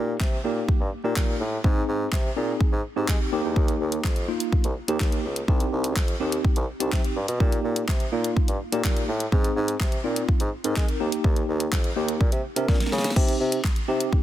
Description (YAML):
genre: dance-pop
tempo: 125 BPM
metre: 4/4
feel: straight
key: Eb major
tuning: A4 = 438 Hz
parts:
  - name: mellow tine electric piano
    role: accompaniment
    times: 0.0-14.2 s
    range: Bb3 to Bb4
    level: -28 LUFS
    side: equal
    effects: medium stereo tremolo, sidechain pumping
  - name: warm bassoon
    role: bass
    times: 0.0-14.1 s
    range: C2 to Ab3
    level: -28 LUFS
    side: equal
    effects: sidechain pumping
  - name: pop drum kit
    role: drums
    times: 0.2-14.2 s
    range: crash cymbal, handclaps, hi-hat, kick drum, snare drum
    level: -24 LUFS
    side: equal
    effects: soft clipping on snare
room: digital ambience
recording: dense, heavily limited modern master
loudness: -22 LUFS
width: side -12 dB against mid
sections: 0.0-13.2 A section; 13.2-14.2 B section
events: drum fill 12.7-13.2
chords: 0.0 Eb/Bb; 1.6 Ab; 3.3 Eb; 5.5 Cm; 7.4 Eb/Bb; 9.3 Ab; 11.0 Eb; 12.2 Bbadd9; 13.2 Cm